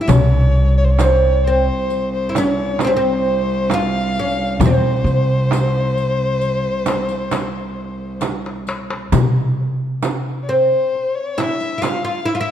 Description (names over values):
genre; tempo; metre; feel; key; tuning
Arabic maqam ensemble; 133 BPM (eighths); 10/8; straight; unclear; A4 = 442 Hz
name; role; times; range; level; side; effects
oud; melody; 0.0-12.5 s; C4 to F4; -19 LUFS; equal; none
warm violin; second line; 0.0-12.5 s; C5 to F5; -23 LUFS; left 3 dB; none
clear cello; drone; 0.0-9.2 s; C2; -26 LUFS; right 1 dB; none
upright bass; bass; 0.1-10.7 s; C2 to C3; -17 LUFS; equal; none
darbuka; percussion; 0.1-12.1 s; none; -22 LUFS; left 3 dB; none
frame drum; percussion; 0.1-12.0 s; none; -24 LUFS; right 6 dB; none
riq; percussion; 0.1-12.0 s; none; -28 LUFS; left 5 dB; none
room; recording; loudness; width
moderate scoring stage reverb, RT60 1.8 s; dark, warm production; -15 LUFS; side -10 dB against mid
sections
0.0-9.1 A section; 9.1-12.5 B section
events
drum fill 8.2-9.1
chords
none